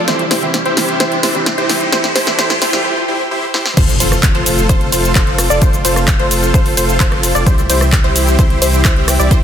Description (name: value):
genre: EDM, festival progressive house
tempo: 130 BPM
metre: 4/4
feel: straight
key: F major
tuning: A4 = 440 Hz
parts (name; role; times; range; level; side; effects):
- lush unison pad; sustained chords; 0.0-9.4 s; C3 to A4; -24 LUFS; equal; chorus, sidechain pumping
- wide unison pluck; arpeggios; 0.0-9.4 s; C5 to D5; -20 LUFS; equal; sidechain pumping, dub echo
- dense compressed supersaw; riff; 0.0-9.4 s; E4 to D5; -18 LUFS; equal; sidechain pumping, low-pass filter, dub echo
- saturated sub bass; bass; 0.0-9.4 s; F1 to C2; -18 LUFS; equal; tube saturation, sidechain pumping, high-pass filter
- riser and impact; sound effects; 0.0-5.6 s; none; -22 LUFS; equal; none
- warm grand piano; accompaniment; 0.1-2.8 s; E3 to E4; -23 LUFS; right 3 dB; sidechain pumping, dub echo
- big-room dance drum kit; drums; 0.1-9.4 s; cabasa, crash cymbal, handclaps, hi-hat, ride cymbal, rim click, snare drum; -17 LUFS; equal; studio reverb
- electronic kick drum; drums; 3.8-9.4 s; none; -13 LUFS; equal; studio reverb
room: light reverb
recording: dense, heavily limited modern master, high-pass filter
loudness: -11 LUFS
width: side -9 dB against mid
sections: 0.0-3.8 A section; 3.8-9.4 B section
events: build-up 0.0-3.8; drum fill 0.0-2.8, 3.5; riser 0.0-2.8; filter sweep on synth pluck 0.0-3.8; break 2.8-3.8; drop 3.8-9.4; impact 3.8-5.6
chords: 0.1 C; 3.8 F; 7.5 C